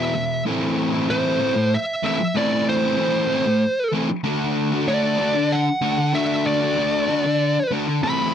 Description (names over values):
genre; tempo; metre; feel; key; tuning
rock; 95 BPM; 3/4; straight; A dorian; A4 = 439 Hz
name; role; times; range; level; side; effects
fuzz lead guitar; melody; 0.0-8.3 s; C5 to B5; -22 LUFS; right 1 dB; distortion, slapback echo
fuzz guitar; riff; 0.0-8.3 s; E2 to F#4; -20 LUFS; left 1 dB; distortion
room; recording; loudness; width
light reverb; dark, warm production; -18 LUFS; side -8 dB against mid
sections
0.5-8.3 A section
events
none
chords
0.5 Am; 4.3 D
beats
| 0.46 1.09 1.73 | 2.36 2.99 3.62 | 4.25 4.88 5.52 | 6.15 6.78 7.41 | 8.04